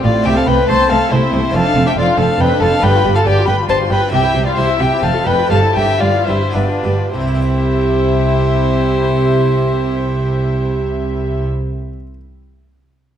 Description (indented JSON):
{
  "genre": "classical, baroque-style concerto movement with solo episodes",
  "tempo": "101-140 BPM",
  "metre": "3/4",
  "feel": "straight",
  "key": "C major",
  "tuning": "A4 = 440 Hz",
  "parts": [
    { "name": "rich chamber violin section", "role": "melody", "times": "0.0-11.4 s", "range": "D5 to C6", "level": "-21 LUFS", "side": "left 4 dB", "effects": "none" },
    { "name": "rich violin", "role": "melody", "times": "0.0-11.4 s", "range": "B4 to A5", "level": "-21 LUFS", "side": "left 2 dB", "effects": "none" },
    { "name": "warm chamber violin section", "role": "second line", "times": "0.0-11.5 s", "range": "D4 to C5", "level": "-20 LUFS", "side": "left 3 dB", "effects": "none" },
    { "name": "harpsichord", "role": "accompaniment", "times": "0.0-12.2 s", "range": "F2 to E5", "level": "-26 LUFS", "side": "right 1 dB", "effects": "none" },
    { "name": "warm chamber viola section", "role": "accompaniment", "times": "0.0-11.5 s", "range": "A3 to A4", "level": "-21 LUFS", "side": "equal", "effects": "none" },
    { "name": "dark chamber cello section", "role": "bass", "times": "0.0-11.5 s", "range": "F2 to C3", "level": "-19 LUFS", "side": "right 2 dB", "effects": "none" },
    { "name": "rich chamber double bass section", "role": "bass", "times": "0.0-11.4 s", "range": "F1 to C2", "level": "-20 LUFS", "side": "right 2 dB", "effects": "none" }
  ],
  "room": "wet recital hall reverb, RT60 1.6 s",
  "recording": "dark, warm production",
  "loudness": "-12 LUFS",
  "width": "side -9 dB against mid",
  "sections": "0.0-7.1 A section; 7.1-10.7 B section",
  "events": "slowing down 3.5-7.1",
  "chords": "0.3 Am/C; 1.5 Dm7/F; 2.8 G7; 4.1 C; 5.0 F; 5.5 C/G; 6.5 G7; 7.1 C"
}